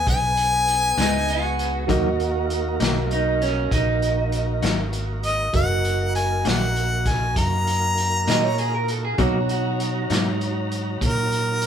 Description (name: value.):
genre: slow blues.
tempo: 66 BPM (dotted quarters).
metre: 12/8.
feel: straight.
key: Eb minor.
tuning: A4 = 440 Hz.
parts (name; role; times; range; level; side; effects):
warm harmonica; melody; 0.0-11.7 s; A#4 to Bb5; -22 LUFS; left 2 dB; none.
tine electric piano; accompaniment; 0.0-11.7 s; D#4 to A#5; -30 LUFS; right 4 dB; fast stereo tremolo.
tonewheel organ; sustained chords; 0.0-11.7 s; F#3 to A#5; -32 LUFS; equal; slow rotary speaker, overdrive.
fingered electric bass; bass; 0.0-11.7 s; Gb1 to B2; -25 LUFS; equal; none.
crunchy breakbeat drum kit; drums; 0.1-11.7 s; hi-hat, kick drum, snare drum; -27 LUFS; equal; none.
electric guitar through a small old amp; second line; 1.0-10.7 s; Db4 to Eb5; -26 LUFS; right 4 dB; warbly pitch drift.
semi-hollow electric guitar; accompaniment; 1.0-10.3 s; Ab2 to Eb4; -25 LUFS; left 4 dB; tremolo.
room: moderate studio reverb, RT60 0.8 s.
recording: band playing live in one room.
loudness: -19 LUFS.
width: side -8 dB against mid.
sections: 0.0-11.7 A section.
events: none.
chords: 0.0 Abm; 1.9 Ebm; 9.2 Bmaj7.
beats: 0.07 0.98 | 1.89 2.81 3.72 4.63 | 5.54 6.45 7.37 8.28 | 9.19 10.11 11.02.